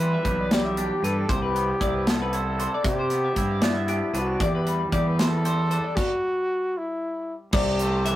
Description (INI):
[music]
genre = math rock and midwest emo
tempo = 77 BPM (dotted quarters)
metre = 6/8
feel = straight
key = C lydian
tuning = A4 = 440 Hz
[part]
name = breathy trumpet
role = melody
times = 0.0-8.2 s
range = E4 to B4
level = -27 LUFS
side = equal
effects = none
[part]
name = twangy electric guitar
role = accompaniment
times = 0.0-8.2 s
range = E2 to G4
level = -32 LUFS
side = right 2 dB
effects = none
[part]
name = twelve-string electric guitar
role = arpeggios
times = 0.0-8.2 s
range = G4 to E5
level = -30 LUFS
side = left 3 dB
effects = none
[part]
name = fuzz fingered electric bass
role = bass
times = 0.0-8.2 s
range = B1 to E3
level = -26 LUFS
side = equal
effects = overdrive
[part]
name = modern studio drum kit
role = drums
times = 0.2-8.2 s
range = crash cymbal, hi-hat, kick drum, snare drum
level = -26 LUFS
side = equal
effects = none
[sound]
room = moderate small room reverb, RT60 0.5 s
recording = rough rehearsal-room recording, warm saturation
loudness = -22 LUFS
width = side -14 dB against mid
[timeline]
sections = 0.0-7.5 A section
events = stop 6.0-7.5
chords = 0.0 Em7; 1.3 Cmaj9; 4.4 Em7; 6.0 Emadd9/G; 7.5 C6